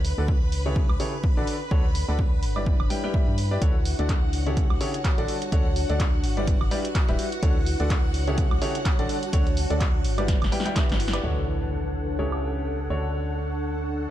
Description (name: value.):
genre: piano house.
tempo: 126 BPM.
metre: 4/4.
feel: swing 57% on 16ths.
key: D major.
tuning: A4 = 440 Hz.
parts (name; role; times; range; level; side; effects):
string machine, violins; sustained chords; 0.0-14.1 s; F#4 to B5; -35 LUFS; equal; ensemble chorus, sidechain pumping.
organ-like FM bass; bass; 0.0-14.1 s; D1 to G2; -27 LUFS; equal; sidechain pumping.
punchy analog drum machine; drums; 0.0-12.4 s; handclaps, hi-hat, snare drum, woodblock; -33 LUFS; right 1 dB; low-pass filter on hats, low-pass filter on perc, low-pass filter on snare, low-pass filter on room.
warbly tape-like pad; texture; 0.1-14.1 s; D4 to C#6; -34 LUFS; equal; chorus, built-in reverb, sidechain pumping.
clear grand piano; riff; 0.2-14.1 s; C#3 to G5; -31 LUFS; left 1 dB; sidechain pumping, digital delay.
electronic kick drum; drums; 0.3-10.9 s; none; -23 LUFS; equal; none.
impact; sound effects; 11.2-13.1 s; none; -34 LUFS; equal; none.
room: digital ambience.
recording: dark, warm production.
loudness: -22 LUFS.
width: side -12 dB against mid.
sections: 0.0-11.2 A section; 11.2-14.1 B section.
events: fade-in on ambient pad 0.0-11.2; drum fill 10.3-11.2; band accent 11.1; impact 11.2-13.1.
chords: 0.0 Dmaj7; 0.8 A7/C#; 1.5 Dmaj7; 2.7 G6; 3.6 Dmaj7; 4.6 A7/C#; 5.3 Dmaj7; 6.5 G6; 7.4 Dmaj7; 8.4 A7/C#; 9.1 Dmaj7; 10.3 G6; 11.2 Dmaj7; 12.2 A7/C#; 12.9 Dmaj7.